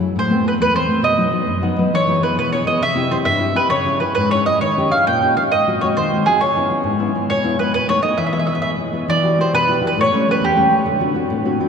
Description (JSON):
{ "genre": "italian folk", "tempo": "134 BPM (dotted quarters)", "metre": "6/8", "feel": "rubato", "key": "E major", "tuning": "A4 = 440 Hz", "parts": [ { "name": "nylon-string guitar", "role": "accompaniment", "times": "0.0-11.7 s", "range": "E2 to F#5", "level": "-19 LUFS", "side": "left 2 dB", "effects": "none" }, { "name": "mandolin", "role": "melody", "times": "0.2-10.7 s", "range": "G4 to G5", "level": "-17 LUFS", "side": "right 2 dB", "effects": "none" } ], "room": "wet cathedral reverb, RT60 7.0 s", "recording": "recorded in a church or concert hall", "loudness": "-15 LUFS", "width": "side -6 dB against mid", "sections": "0.0-9.1 A section; 9.1-11.7 B section", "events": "nylon-string guitar fill 1.5-1.9", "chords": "0.1 Amadd9; 1.0 B; 1.9 E; 2.8 C; 3.7 C#m; 4.6 D#7; 5.5 G#7; 6.4 C#m7; 7.3 E/B; 7.7 B7; 8.2 E; 9.1 Emadd9; 10.0 A7; 10.9 D7", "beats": "| 0.14 0.58 | 1.02 1.47 | 1.93 2.37 | 2.82 3.26 | 3.71 4.16 | 4.61 5.06 | 5.51 5.97 | 6.41 6.85 | 7.29 7.74 | 8.18 8.63 | 9.09 9.54 | 9.98 10.42 | 10.86 11.31" }